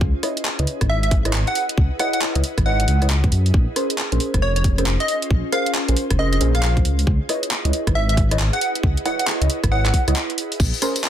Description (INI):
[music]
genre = UK garage, two-step garage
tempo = 136 BPM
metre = 4/4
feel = swing 63% on 16ths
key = unclear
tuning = A4 = 441 Hz
[part]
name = ethereal airy pad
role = sustained chords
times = 0.0-11.1 s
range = Db4 to Eb5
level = -31 LUFS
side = right 1 dB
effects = ensemble chorus, built-in reverb, sidechain pumping
[part]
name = dark detuned saw bass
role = bass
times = 0.0-10.7 s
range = F1 to Gb2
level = -19 LUFS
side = equal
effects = none
[part]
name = electronic kick drum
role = drums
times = 0.0-10.7 s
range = none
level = -19 LUFS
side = equal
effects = overdrive
[part]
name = deep mellow chord stab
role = stabs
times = 0.2-10.9 s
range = Db4 to Eb5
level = -26 LUFS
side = equal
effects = chorus, ping-pong delay
[part]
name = garage drum kit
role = drums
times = 0.2-11.1 s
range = crash cymbal, handclaps, hi-hat, rim click, tambourine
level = -25 LUFS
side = right 1 dB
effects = overdrive
[part]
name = plucky unison lead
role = melody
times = 0.9-10.2 s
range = Db5 to Gb5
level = -24 LUFS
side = right 1 dB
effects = ping-pong delay
[sound]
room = light reverb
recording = dense, heavily limited modern master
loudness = -17 LUFS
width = side -10 dB against mid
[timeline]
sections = 0.0-10.6 A section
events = break 10.2-10.6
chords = 0.0 Dbm9; 3.5 Bbm9; 6.8 Dbm9